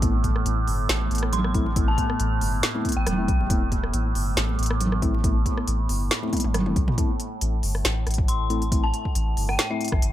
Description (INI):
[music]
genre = deep dubstep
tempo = 138 BPM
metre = 4/4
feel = swing 54% on 16ths, half-time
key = A minor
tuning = A4 = 436 Hz
[part]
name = overtone-sweeping drone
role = sustained chords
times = 0.0-10.1 s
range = A2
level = -31 LUFS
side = right 2 dB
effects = chorus, built-in reverb
[part]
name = mellow tine electric piano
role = stabs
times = 0.0-9.9 s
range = A3 to E4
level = -32 LUFS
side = left 3 dB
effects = dub echo
[part]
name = soft dub sub bass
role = bass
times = 0.0-10.1 s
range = E1 to C2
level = -25 LUFS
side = equal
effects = tube saturation
[part]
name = deep house drum kit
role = drums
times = 0.0-10.1 s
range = hi-hat, rim click, snare drum, toms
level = -28 LUFS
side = equal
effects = none
[part]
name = electronic kick drum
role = drums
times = 0.0-10.0 s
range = none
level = -24 LUFS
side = equal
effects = none
[part]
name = congas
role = percussion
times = 0.2-7.0 s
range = none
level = -31 LUFS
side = right 1 dB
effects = dub echo
[part]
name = dark detuned synth bell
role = melody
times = 1.3-3.4, 8.3-10.1 s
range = E5 to C6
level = -31 LUFS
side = left 2 dB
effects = chorus, phaser, dub echo
[sound]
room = little or no reverb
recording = none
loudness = -21 LUFS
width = side -13 dB against mid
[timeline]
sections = 0.0-7.0 A section; 7.0-10.1 A section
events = drop 0.0-7.0, 7.0-10.1; drum fill 6.3-7.0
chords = 0.0 Am